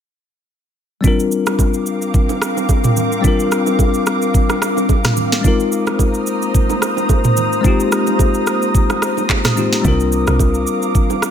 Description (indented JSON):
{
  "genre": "amapiano",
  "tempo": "109 BPM",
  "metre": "4/4",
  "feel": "swing 55% on 16ths",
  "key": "C minor",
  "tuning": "A4 = 438 Hz",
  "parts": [
    { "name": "bell-like tine electric piano", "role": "accompaniment", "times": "1.0-11.3 s", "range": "G3 to Bb4", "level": "-19 LUFS", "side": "left 4 dB", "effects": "none" },
    { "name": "glassy FM pad", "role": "sustained chords", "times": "1.8-11.3 s", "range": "Bb3 to Eb6", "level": "-20 LUFS", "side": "equal", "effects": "ensemble chorus, built-in reverb, sidechain pumping" },
    { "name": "smooth R&B drum kit", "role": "drums", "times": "1.0-11.3 s", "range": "handclaps, kick drum, rim click, shaker, snare drum, toms", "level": "-16 LUFS", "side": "right 1 dB", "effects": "none" },
    { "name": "congas and bongos", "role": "percussion", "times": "1.0-11.3 s", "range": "none", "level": "-26 LUFS", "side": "right 16 dB", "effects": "none" },
    { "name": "deep log drum bass", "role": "bass", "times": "9.8-10.7 s", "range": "C2", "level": "-18 LUFS", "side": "right 1 dB", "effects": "none" }
  ],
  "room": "digital ambience",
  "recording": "none",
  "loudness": "-13 LUFS",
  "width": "side -9 dB against mid",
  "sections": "1.0-11.3 A section",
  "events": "none",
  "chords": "1.0 C9sus4; 5.4 Bb9sus4; 9.8 C9sus4"
}